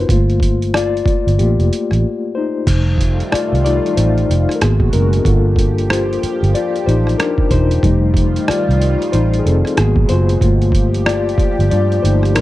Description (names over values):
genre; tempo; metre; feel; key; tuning
R&B, neo-soul; 93 BPM; 4/4; swing 61% on 16ths; G minor; A4 = 440 Hz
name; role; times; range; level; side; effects
reed electric piano; accompaniment; 0.0-12.4 s; G3 to D5; -18 LUFS; left 4 dB; overdrive, fast tremolo
vintage muted fingered electric bass; bass; 0.0-12.4 s; E1 to G2; -15 LUFS; right 1 dB; none
boom bap sampler-style drum kit; drums; 0.1-12.4 s; crash cymbal, hi-hat, kick drum, rim click; -18 LUFS; right 1 dB; none
lush unison pad; sustained chords; 2.8-12.4 s; Cb3 to G4; -24 LUFS; right 4 dB; chorus, phaser
room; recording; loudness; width
little or no reverb; dry, close 1970s-style studio recording; -12 LUFS; side -16 dB against mid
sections
0.0-2.7 A section; 2.7-12.4 A section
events
reed electric piano solo 0.0-2.7, 2.7-12.4; break 2.0-2.7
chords
0.1 Gm9; 4.6 Abm9; 5.3 Gm9; 7.8 F9; 9.8 Abm9; 10.4 Gm9